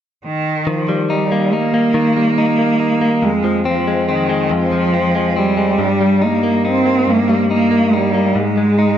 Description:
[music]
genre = pop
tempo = 47 BPM (dotted quarters)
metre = 6/8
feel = straight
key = Eb major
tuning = A4 = 440 Hz
[part]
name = clear cello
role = melody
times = 0.3-9.0 s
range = Eb3 to C4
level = -15 LUFS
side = right 3 dB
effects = ping-pong delay
[part]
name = direct-recorded clean electric guitar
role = accompaniment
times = 0.7-9.0 s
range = F2 to Eb4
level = -17 LUFS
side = left 4 dB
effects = none
[sound]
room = light reverb, small room ambience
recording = nothing above 7.8 kHz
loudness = -13 LUFS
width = side -10 dB against mid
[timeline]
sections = 0.7-9.0 A section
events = none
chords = 0.0 N.C.; 0.7 Eb; 3.2 Fm; 5.8 Eb/G; 8.4 Ab5

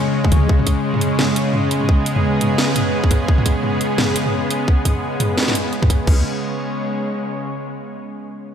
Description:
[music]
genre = half-time drum and bass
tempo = 172 BPM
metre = 4/4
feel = swing 57% on 16ths, half-time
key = unclear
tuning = A4 = 440 Hz
[part]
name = bowed-like drone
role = sustained chords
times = 0.0-7.4 s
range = C#3 to C#5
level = -19 LUFS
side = equal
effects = built-in reverb, vintage 12-bit sampler grit, sidechain pumping
[part]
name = drum and bass drum kit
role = drums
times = 0.2-6.2 s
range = crash cymbal, hi-hat, snare drum, toms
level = -22 LUFS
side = right 1 dB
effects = overdrive, small room reverb
[part]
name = electronic kick drum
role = drums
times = 0.2-6.2 s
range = none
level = -16 LUFS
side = equal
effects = overdrive, small room reverb
[part]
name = deep soft wobble bass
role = bass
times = 0.3-0.5, 6.1-6.2 s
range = C#2 to D2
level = -17 LUFS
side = equal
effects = chorus
[sound]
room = wet lush hall reverb, RT60 2.0 s, digital ambience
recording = dreamy mix soaked in reverb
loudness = -16 LUFS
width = side -8 dB against mid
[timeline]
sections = 0.0-6.1 A section; 6.1-7.5 B section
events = none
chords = 0.0 C#5

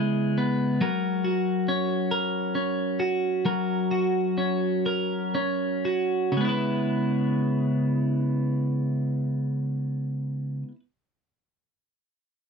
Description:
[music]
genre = pop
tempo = 38-47 BPM (dotted quarters)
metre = 6/8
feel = straight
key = C# minor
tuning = A4 = 441 Hz
[part]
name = twelve-string electric guitar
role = solo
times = 0.0-10.8 s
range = C#3 to B4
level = -24 LUFS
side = equal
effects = none
[sound]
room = moderate booth ambience, RT60 0.2 s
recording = dry, close 1970s-style studio recording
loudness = -24 LUFS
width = side -5 dB against mid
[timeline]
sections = 0.0-6.4 A section; 6.4-9.5 B section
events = slowing down 0.8-6.4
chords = 0.0 C#m7; 0.8 F#; 6.4 C#m7

